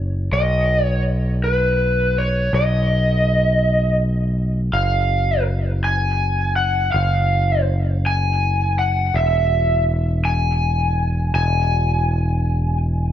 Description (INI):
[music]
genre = post-rock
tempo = 54 BPM (dotted quarters)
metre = 6/8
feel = straight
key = unclear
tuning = A4 = 442 Hz
[part]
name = growling picked electric bass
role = bass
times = 0.0-13.1 s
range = E1 to B1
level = -19 LUFS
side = equal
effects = overdrive
[part]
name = lead guitar through a small cranked amp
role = melody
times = 0.3-12.8 s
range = B4 to G#5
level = -20 LUFS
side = equal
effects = overdrive, digital delay
[sound]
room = light reverb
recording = dark, warm production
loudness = -16 LUFS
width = side -10 dB against mid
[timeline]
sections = 0.0-13.1 A section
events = none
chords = 0.3 B; 4.7 F#sus2; 9.1 E